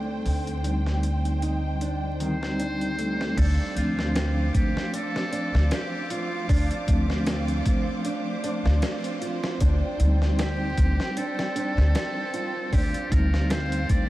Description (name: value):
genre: trip hop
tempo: 77 BPM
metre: 4/4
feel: swing 56% on 16ths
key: D phrygian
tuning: A4 = 440 Hz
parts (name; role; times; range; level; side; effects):
- bell-like tine electric piano; accompaniment; 0.0-14.1 s; Eb3 to Eb4; -30 LUFS; equal; tremolo, vintage 12-bit sampler grit, tape echo
- clear symphonic violin section; sustained chords; 0.0-14.1 s; C5 to D6; -36 LUFS; equal; none
- nylon-string guitar; arpeggios; 0.0-14.1 s; A3 to F4; -34 LUFS; right 2 dB; vintage 12-bit sampler grit, tape echo
- upright bass; bass; 0.0-14.1 s; D2; -24 LUFS; equal; none
- dusty soul sampler-style drum kit; drums; 0.3-14.1 s; crash cymbal, hi-hat, kick drum, snare drum; -29 LUFS; equal; high-pass filter on hats, studio reverb, high-pass filter on snare, high-pass filter on kick, high-pass filter on cymbals
- trumpet with metal mute; melody; 2.2-14.1 s; F4 to D5; -34 LUFS; equal; vintage 12-bit sampler grit, dub echo
room: moderate huge ambient reverb, RT60 7.5 s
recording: dreamy mix soaked in reverb, vinyl crackle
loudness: -23 LUFS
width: side -16 dB against mid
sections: 0.0-3.4 A section; 3.4-14.1 B section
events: none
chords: 0.0 Cm/D; 3.4 Dm7; 9.6 Cm/D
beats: | 0.26 1.04 1.81 2.59 | 3.37 4.15 4.93 5.71 | 6.49 7.27 8.05 8.83 | 9.61 10.39 11.17 11.95 | 12.72 13.50